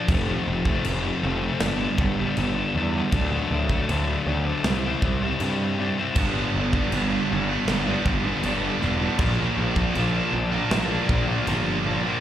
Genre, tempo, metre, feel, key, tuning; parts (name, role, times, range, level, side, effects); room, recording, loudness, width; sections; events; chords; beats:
quiet-loud alternative rock; 79 BPM; 4/4; straight; A4 = 440 Hz
sludgy distorted guitar; riff; 0.0-12.2 s; F2 to E4; -25 LUFS; left 3 dB; overdrive, slapback echo
fuzz picked electric bass; bass; 0.1-12.0 s; E1 to G2; -27 LUFS; right 1 dB; overdrive
big rock drum kit; drums; 0.1-11.7 s; crash cymbal, kick drum, snare drum; -28 LUFS; equal
scooped high-gain guitar; riff; 6.2-12.2 s; G2 to D4; -28 LUFS; right 13 dB; distortion, slapback echo
light reverb; live gig heard through the venue's PA, club reverb; -21 LUFS; side -11 dB against mid
0.0-12.2 A section
0.1 F; 1.6 G; 3.1 D; 4.7 C; 6.2 G; 9.2 Bb
| 0.09 0.85 1.61 2.37 | 3.13 3.89 4.65 5.41 | 6.17 6.93 7.69 8.45 | 9.21 9.96 10.72 11.48